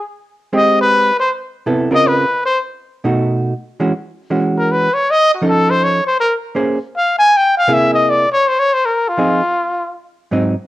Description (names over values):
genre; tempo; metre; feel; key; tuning
jazz; 160 BPM; 3/4; swing 65% on 8ths; Db major; A4 = 440 Hz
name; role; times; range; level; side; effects
breathy trumpet; melody; 0.0-10.0 s; F4 to Ab5; -13 LUFS; left 1 dB; plate reverb
hollow-body jazz guitar; accompaniment; 0.5-10.5 s; Ab2 to C5; -16 LUFS; right 2 dB; none
room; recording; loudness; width
moderate studio reverb, RT60 0.6 s; home recording on cassette; -13 LUFS; side -16 dB against mid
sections
0.0-1.7 A section; 1.7-10.7 A section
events
trumpet solo 0.0-10.7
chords
0.0 Abmaj7; 1.7 Db6; 2.8 Cb7; 3.9 E69; 5.1 F7b13; 6.2 Bbm9; 7.3 C7b13; 8.4 Fm7; 9.6 Ab7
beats
0.17 | 0.54 0.92 1.29 | 1.67 2.05 2.42 | 2.80 3.17 3.55 | 3.93 4.30 4.68 | 5.05 5.43 5.81 | 6.18 6.56 6.93 | 7.31 7.69 8.06 | 8.44 8.81 9.19 | 9.56 9.94 10.32